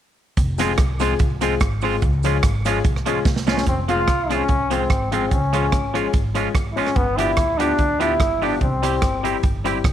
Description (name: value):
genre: ska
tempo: 146 BPM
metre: 4/4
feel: swing 54% on 8ths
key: F harmonic minor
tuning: A4 = 440 Hz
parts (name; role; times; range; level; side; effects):
- upright bass; bass; 0.4-9.9 s; F1 to D2; -25 LUFS; equal; none
- swinging big-band drum kit; drums; 0.4-9.9 s; hi-hat, kick drum, rim click, snare drum; -22 LUFS; right 1 dB; none
- cabasa; percussion; 0.4-3.6 s; none; -44 LUFS; right 12 dB; none
- twangy electric guitar; accompaniment; 0.6-9.8 s; F3 to G4; -26 LUFS; right 10 dB; none
- warm upright piano; stabs; 0.6-9.9 s; G3 to Ab4; -25 LUFS; left 9 dB; none
- bright trombone; melody; 3.5-9.4 s; B3 to F4; -22 LUFS; left 1 dB; slapback echo
room: light reverb, studio reverb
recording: 1960s-style stereo with parts hard left and right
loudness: -17 LUFS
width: side -10 dB against mid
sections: 0.4-3.7 A section; 3.7-9.9 B section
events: drum fill 3.3-3.7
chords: 0.4 Fm; 2.0 Db; 3.7 Fm; 5.3 Db; 7.0 G7; 8.6 C